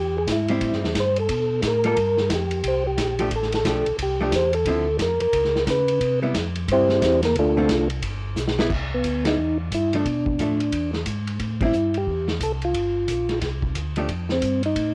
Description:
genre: soul jazz organ trio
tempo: 178 BPM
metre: 4/4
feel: swing 62% on 8ths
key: C major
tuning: A4 = 440 Hz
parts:
  - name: percussive tonewheel organ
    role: melody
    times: 0.0-14.9 s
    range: A3 to C5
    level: -24 LUFS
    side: equal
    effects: slow rotary speaker
  - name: mellow tonewheel organ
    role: bass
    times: 0.0-14.9 s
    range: G1 to Db3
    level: -29 LUFS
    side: equal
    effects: chorus vibrato, slow rotary speaker, transformer saturation
  - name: vintage drum kit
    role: drums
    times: 0.3-14.9 s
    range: crash cymbal, hi-hat, kick drum, ride cymbal, snare drum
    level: -30 LUFS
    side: equal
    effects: cassette tape
  - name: hollow-body jazz guitar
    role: accompaniment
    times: 0.5-11.7, 14.0-14.1 s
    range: D3 to A4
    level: -29 LUFS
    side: equal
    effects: cassette tape
room: light reverb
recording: home recording on cassette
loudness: -23 LUFS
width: mono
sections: 0.0-8.7 A section; 8.7-14.9 B section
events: tonewheel organ solo 0.0-8.7; drum fill 8.4-8.7; band accent 9.2, 11.6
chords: 0.0 E; 0.6 Am7; 2.0 Gm7; 2.6 Csus2; 3.3 F69; 4.7 Dm9; 5.3 Bbm/Db; 6.0 C; 7.4 Dm7; 8.0 G; 8.7 Cmaj7; 10.1 Bm7b5; 10.7 E; 11.4 Am7; 12.7 Gm7; 13.4 Csus2; 14.1 Fadd9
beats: 0.28 | 0.62 0.96 1.29 1.63 | 1.97 2.30 2.64 2.98 | 3.31 3.65 3.99 4.33 | 4.66 5.00 5.34 5.67 | 6.01 6.35 6.68 7.02 | 7.36 7.69 8.03 8.37 | 8.71 9.04 9.38 9.72 | 10.05 10.39 10.73 11.06 | 11.40 11.74 12.07 12.41 | 12.75 13.08 13.42 13.76 | 14.09 14.43 14.77

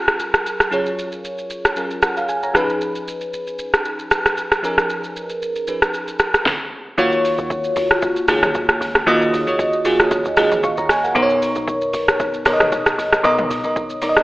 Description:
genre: amapiano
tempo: 115 BPM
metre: 4/4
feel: swing 55% on 16ths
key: Eb minor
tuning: A4 = 440 Hz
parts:
  - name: bell-like FM electric piano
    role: accompaniment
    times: 0.0-14.2 s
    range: B2 to Db6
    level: -19 LUFS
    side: equal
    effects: chorus, phaser
  - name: deep house drum kit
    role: drums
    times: 0.1-14.2 s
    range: hi-hat, kick drum, rim click, shaker, snare drum, toms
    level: -18 LUFS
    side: equal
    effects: overdrive
  - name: deep log drum bass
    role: bass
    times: 7.0-14.2 s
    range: Ab1 to Eb2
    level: -32 LUFS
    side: equal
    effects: none
room: wet plate reverb, RT60 1.7 s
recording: dreamy mix soaked in reverb, telephone sound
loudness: -16 LUFS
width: side -18 dB against mid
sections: 0.0-7.0 A section; 7.0-14.2 B section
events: stop 6.5-7.0; drop 7.0-14.2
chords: 0.0 Gbmaj9; 2.5 Db7/F; 6.5 N.C.; 7.0 Ebm9; 11.2 Bmaj7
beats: 0.20 | 0.72 1.24 1.76 2.29 | 2.81 3.33 3.85 4.37 | 4.89 5.42 5.94 6.46 | 6.98 7.50 8.03 8.55 | 9.07 9.59 10.11 10.63 | 11.15 11.68 12.20 12.72 | 13.24 13.76

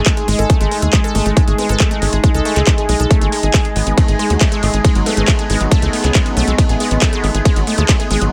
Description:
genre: psychedelic trance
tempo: 138 BPM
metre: 4/4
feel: straight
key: G# phrygian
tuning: A4 = 441 Hz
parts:
  - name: overtone-sweeping drone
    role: sustained chords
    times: 0.0-8.3 s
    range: G#3 to G#4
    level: -26 LUFS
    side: equal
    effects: chorus, built-in reverb, phaser, sidechain pumping
  - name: unison pluck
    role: riff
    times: 0.0-8.3 s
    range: F#3 to A4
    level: -23 LUFS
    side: equal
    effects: sidechain pumping, delay
  - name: deep dark ambient pad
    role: texture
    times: 0.0-8.3 s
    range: D#4 to D#5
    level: -27 LUFS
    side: equal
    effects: chorus, built-in reverb, sidechain pumping
  - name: drum and bass drum kit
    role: drums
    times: 0.1-8.3 s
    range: handclaps, hi-hat, ride cymbal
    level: -24 LUFS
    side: equal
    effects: none
  - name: electronic kick drum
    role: drums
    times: 0.1-8.0 s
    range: none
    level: -16 LUFS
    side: equal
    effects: none
  - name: tight sequencer bass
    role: bass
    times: 0.3-8.3 s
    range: G#1 to D#2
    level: -19 LUFS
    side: equal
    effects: none
  - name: formant-sweep wobble bass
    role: second line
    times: 1.6-6.5 s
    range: B3 to D#4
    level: -31 LUFS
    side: equal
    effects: chorus, cassette tape, sidechain pumping, high-pass filter, delay
room: little or no reverb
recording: none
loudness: -14 LUFS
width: mono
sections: 0.0-8.3 A section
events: none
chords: 0.0 G#5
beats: 0.06 | 0.50 0.93 1.37 1.80 | 2.24 2.67 3.11 3.54 | 3.98 4.41 4.84 5.28 | 5.71 6.15 6.58 7.02 | 7.45 7.89

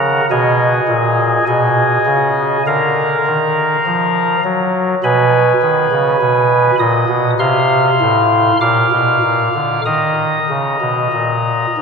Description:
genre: classical, chorale-style piece for pipe organ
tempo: 47-51 BPM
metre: 4/4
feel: rubato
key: unclear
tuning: A4 = 440 Hz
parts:
  - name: chamber organ, soft reed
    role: solo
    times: 0.0-11.8 s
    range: Ab2 to F6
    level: -12 LUFS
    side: equal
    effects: none
room: wet cathedral reverb, RT60 4.7 s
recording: none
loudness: -12 LUFS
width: side -5 dB against mid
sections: 0.0-11.8 A section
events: none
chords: 0.3 Abm; 2.7 Bb/D; 5.0 Abm/Cb; 7.4 F/C; 8.6 Bb; 9.9 Eb5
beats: | 0.30 1.48 2.67 3.86 | 5.04 6.21 7.39 8.61 | 9.85 11.12

